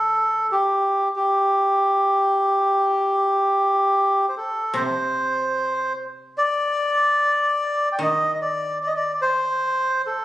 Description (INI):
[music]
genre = japanese traditional, Japanese chamber music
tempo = 74 BPM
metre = 4/4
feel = rubato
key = D in sen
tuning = A4 = 441 Hz
[part]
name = melodica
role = melody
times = 0.0-10.2 s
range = G4 to G5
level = -19 LUFS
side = equal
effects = none
[part]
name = koto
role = accompaniment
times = 0.0-10.2 s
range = C3 to Eb3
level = -31 LUFS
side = left 1 dB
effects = none
[sound]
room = light reverb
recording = recorded on a phone in the room, club reverb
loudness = -18 LUFS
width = side -15 dB against mid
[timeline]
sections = 0.0-10.2 A section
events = none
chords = none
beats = 0.71 | 1.53 2.33 3.14 3.94 | 4.75 5.56 6.36 7.17 | 7.99 8.80 9.63